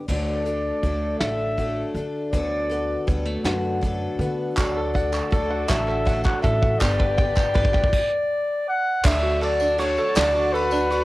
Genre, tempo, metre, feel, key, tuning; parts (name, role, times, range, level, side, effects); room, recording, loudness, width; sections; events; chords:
indie folk with a building arrangement; 54 BPM (dotted quarters); 6/8; straight; D major; A4 = 441 Hz
fingerpicked old ladder-braced acoustic guitar; accompaniment; 0.0-6.8 s; D2 to F#4; -31 LUFS; equal; cassette tape
warm flugelhorn; melody; 0.1-11.0 s; B4 to F#5; -24 LUFS; left 1 dB; cassette tape
picked twelve-string acoustic guitar; accompaniment; 0.1-11.0 s; G2 to A4; -30 LUFS; left 3 dB; cassette tape
upright bass; bass; 0.1-11.0 s; G1 to D3; -28 LUFS; equal
soft brush drum kit; drums; 0.1-11.0 s; crash cymbal, hi-hat, kick drum, ride cymbal, snare drum; -24 LUFS; equal
dark chamber string section; sustained chords; 4.6-11.0 s; D3 to A5; -34 LUFS; equal; cassette tape
open-back banjo; arpeggios; 4.6-11.0 s; D4 to G5; -28 LUFS; right 3 dB; cassette tape
group handclap; percussion; 4.6-10.3 s; -31 LUFS; right 2 dB
tambourine; percussion; 4.6-10.9 s; -41 LUFS; left 6 dB
light reverb, studio reverb; home recording on cassette; -20 LUFS; side -18 dB against mid
0.1-9.0 A section; 9.0-11.0 B section
build-up 0.1-9.0; drum fill 0.1-7.9; stop 7.9-9.0
0.1 D; 2.3 Bm7/D; 4.6 D; 6.8 G; 9.0 D